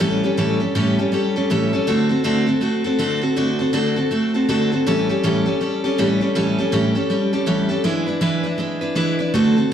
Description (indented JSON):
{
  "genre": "rock",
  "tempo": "161 BPM",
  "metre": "4/4",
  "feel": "swing 62% on 8ths",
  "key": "A mixolydian",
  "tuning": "A4 = 440 Hz",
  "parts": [
    { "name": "picked steel-string acoustic guitar", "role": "solo", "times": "0.0-9.7 s", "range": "A2 to B4", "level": "-17 LUFS", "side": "equal", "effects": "slapback echo" }
  ],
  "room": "light reverb, studio ambience",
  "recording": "live gig heard through the venue's PA, club reverb",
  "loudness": "-17 LUFS",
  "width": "side -9 dB against mid",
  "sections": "0.0-9.7 A section",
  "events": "none",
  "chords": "0.0 A7; 1.9 D7; 4.9 A7; 7.8 E7"
}